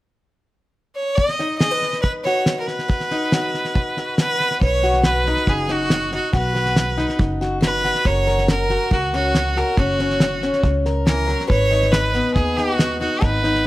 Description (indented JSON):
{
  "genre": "honky-tonk and classic country",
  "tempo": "140 BPM",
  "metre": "4/4",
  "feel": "straight",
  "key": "B major",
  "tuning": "A4 = 440 Hz",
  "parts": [
    { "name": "clear fiddle", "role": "melody", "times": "1.0-13.7 s", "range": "F#4 to D#5", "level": "-21 LUFS", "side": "right 1 dB", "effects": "none" },
    { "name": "picked acoustic archtop guitar", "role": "accompaniment", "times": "1.2-13.7 s", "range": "G#2 to B4", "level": "-23 LUFS", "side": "left 2 dB", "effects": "none" },
    { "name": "cloth-damped thuddy drum kit", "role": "drums", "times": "1.2-13.6 s", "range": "hi-hat, kick drum, snare drum", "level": "-21 LUFS", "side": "equal", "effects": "none" },
    { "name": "upright bass", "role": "bass", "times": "4.6-13.7 s", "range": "F#1 to D#2", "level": "-23 LUFS", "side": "equal", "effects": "none" }
  ],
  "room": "light reverb",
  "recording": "none",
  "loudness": "-17 LUFS",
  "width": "side -17 dB against mid",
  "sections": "0.0-1.2 A section; 1.2-4.6 B section; 4.6-13.7 C section",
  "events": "none",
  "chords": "0.0 N.C.; 1.2 B; 8.1 F#; 11.5 G#m"
}